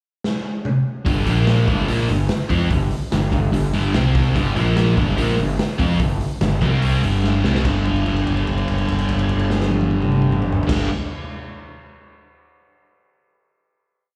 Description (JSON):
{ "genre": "classic rock", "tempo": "146 BPM", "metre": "4/4", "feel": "straight", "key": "G minor", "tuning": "A4 = 437 Hz", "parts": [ { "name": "raw garage drum kit", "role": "drums", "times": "0.2-10.8 s", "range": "crash cymbal, hi-hat, kick drum, snare drum, toms", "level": "-25 LUFS", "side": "equal", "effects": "none" }, { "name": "sludgy distorted guitar", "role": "riff", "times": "1.1-10.9 s", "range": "G2 to F4", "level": "-23 LUFS", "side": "equal", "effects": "overdrive, slapback echo" }, { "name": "fuzz picked electric bass", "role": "bass", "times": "1.1-10.9 s", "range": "G1 to F2", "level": "-23 LUFS", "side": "equal", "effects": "overdrive" } ], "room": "light reverb, small room reverb", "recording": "live gig heard through the venue's PA, club reverb", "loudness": "-19 LUFS", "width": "mono", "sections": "0.0-1.1 pickup bar; 1.1-7.6 riff; 7.6-10.9 final chord", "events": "drum fill 0.2-1.1, 7.2-7.6; held note 7.6-10.7", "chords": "0.0 N.C.; 1.1 G5; 1.3 Bb5; 1.7 Gm; 3.9 C5; 4.4 G5; 4.6 Bb5; 5.0 Gm; 6.6 C5; 7.0 G5" }